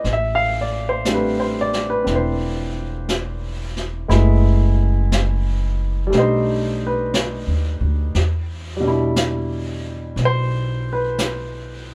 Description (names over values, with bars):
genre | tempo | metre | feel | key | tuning
jazz ballad | 59 BPM | 4/4 | swing 66% on 8ths | unclear | A4 = 437 Hz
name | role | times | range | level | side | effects
warm grand piano | accompaniment | 0.0-11.9 s | B2 to F5 | -24 LUFS | equal | none
upright bass | bass | 0.0-11.9 s | E1 to E2 | -23 LUFS | equal | none
vintage brush drum kit | drums | 0.0-11.9 s | brushed snare drum, hi-hat, snare drum | -29 LUFS | equal | none
room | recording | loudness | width
light reverb | band playing live in one room | -20 LUFS | mono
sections
0.0-11.9 A section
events
none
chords
0.0 Am7; 4.1 F#m11; 6.1 B7alt; 8.1 Em7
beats
| 0.04 1.06 2.07 3.08 | 4.10 5.11 6.12 7.14 | 8.15 9.16 10.17 11.19